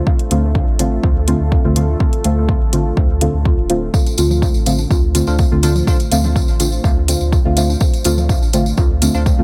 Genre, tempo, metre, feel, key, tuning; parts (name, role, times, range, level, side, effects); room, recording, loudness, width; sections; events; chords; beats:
dub techno; 124 BPM; 4/4; straight; D minor; A4 = 440 Hz
deep dark ambient pad; sustained chords; 0.0-9.4 s; A3 to E5; -28 LUFS; equal; chorus, built-in reverb, sidechain pumping
electronic kick drum; drums; 0.1-9.4 s; -17 LUFS; equal
electronic hi-hat; drums; 0.2-9.1 s; -24 LUFS; equal
deep mellow chord stab; stabs; 0.3-9.4 s; D3 to F4; -21 LUFS; equal; chorus, phaser, dub echo
pure sine sub bass; bass; 0.3-9.4 s; D1 to D2; -20 LUFS; equal; sidechain pumping
tambourine; percussion; 3.9-9.4 s; -29 LUFS; equal
bongos and congas; percussion; 4.1-9.2 s; -31 LUFS; equal
wavetable chord stab; riff; 5.3-6.0, 9.1-9.2 s; D4 to F5; -32 LUFS; equal; sidechain pumping, dub echo
light reverb; -15 LUFS; mono
0.0-9.4 A section
0.0 Dm7
| 0.07 0.55 1.03 1.52 | 2.00 2.49 2.97 3.46 | 3.94 4.42 4.91 5.39 | 5.87 6.36 6.84 7.33 | 7.81 8.29 8.78 9.26